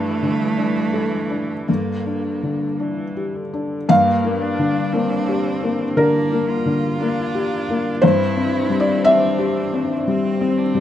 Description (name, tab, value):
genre	neoclassical piano and strings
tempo	53-60 BPM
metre	4/4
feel	rubato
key	G dorian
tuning	A4 = 440 Hz
part	rich cello	second line	0.0-10.8 s	A3 to F4	-26 LUFS	right 4 dB	none
part	felt-muted upright piano	accompaniment	0.0-10.8 s	G2 to F5	-18 LUFS	left 2 dB	none
part	warm viola	accompaniment	0.0-10.8 s	D3 to D4	-28 LUFS	right 2 dB	none
room	moderate studio reverb, RT60 0.5 s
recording	rough home demo mix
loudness	-17 LUFS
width	side -11 dB against mid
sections	0.0-3.9 A section; 3.9-10.8 B section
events	none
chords	0.0 A7sus4/G; 1.7 Gm; 3.9 Gm7; 8.0 C/G